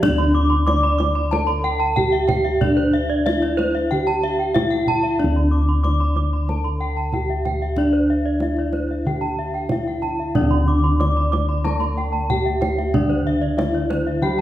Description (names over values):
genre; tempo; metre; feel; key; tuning
Balinese gamelan; 93 BPM; 4/4; straight; D slendro; A4 = 440 Hz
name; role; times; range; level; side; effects
gamelan-type bronze metallophone; melody; 0.0-14.4 s; D4 to D5; -24 LUFS; equal; none
gamelan-type bronze metallophone; accompaniment; 0.0, 10.3-14.4 s; D3 to A3+25c; -28 LUFS; left 1 dB; none
gamelan-type bronze metallophone; arpeggios; 0.0-14.4 s; D5 to D6; -26 LUFS; left 4 dB; none
gamelan-type bossed gongs; bass; 0.0-14.4 s; D2 to E4+30c; -21 LUFS; equal; none
kendang; percussion; 0.0-14.4 s; none; -27 LUFS; right 2 dB; none
gamelan-type bronze metallophone; arpeggios; 0.2-14.4 s; C5-45c to D6; -27 LUFS; right 4 dB; none
room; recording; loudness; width
wet recital hall reverb, RT60 1.5 s; heard from further back in the room; -17 LUFS; side -13 dB against mid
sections
0.0-14.4 A section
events
none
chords
none